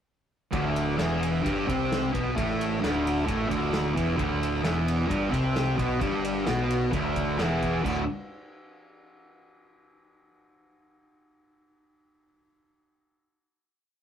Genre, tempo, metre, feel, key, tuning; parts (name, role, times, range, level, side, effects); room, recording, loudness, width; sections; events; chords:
garage rock duo or trio; 131 BPM; 4/4; straight; A4 = 440 Hz
fuzz guitar; riff; 0.5-8.0 s; D2 to C4; -25 LUFS; equal; distortion
growling picked electric bass; bass; 0.5-8.1 s; D1 to C2; -33 LUFS; left 1 dB; overdrive
vintage drum kit; drums; 0.5-8.0 s; crash cymbal, kick drum, ride cymbal, snare drum; -34 LUFS; equal
moderate studio reverb, RT60 0.6 s; rough rehearsal-room recording, warm saturation; -24 LUFS; side -9 dB against mid
0.5-7.8 riff; 7.8-9.7 final chord
0.5 D5